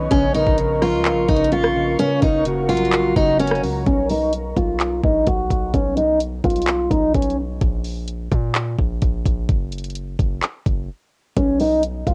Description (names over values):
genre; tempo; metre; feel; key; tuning
hip hop, trap; 128 BPM; 4/4; half-time; unclear; A4 = 440 Hz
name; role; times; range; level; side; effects
breathy flute-like synth lead; second line; 0.0-3.8 s; Gb4 to Bb4; -28 LUFS; equal; chorus, tape echo
semi-hollow electric guitar; accompaniment; 0.0-3.9 s; Db3 to C#4; -27 LUFS; equal; low-pass filter
deep dark ambient pad; sustained chords; 0.0-3.8 s; Bb4 to Db6; -31 LUFS; equal; chorus, built-in reverb
hard-hitting 808-style bass; bass; 0.0-12.1 s; Gb1 to Bb2; -29 LUFS; equal; none
picked steel-string acoustic guitar; melody; 0.1-7.4, 11.4-12.1 s; Db4 to F#4; -21 LUFS; equal; low-pass filter, cassette tape, tape echo
trap drum kit; drums; 0.1-12.1 s; handclaps, hi-hat, kick drum, rim click; -24 LUFS; equal; none
room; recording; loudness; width
light reverb; home recording on cassette; -20 LUFS; mono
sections
0.0-3.9 A section; 3.9-12.1 B section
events
break 7.6-11.4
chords
0.1 Bbm; 2.0 Gb; 3.9 B5; 7.6 N.C.; 11.4 B5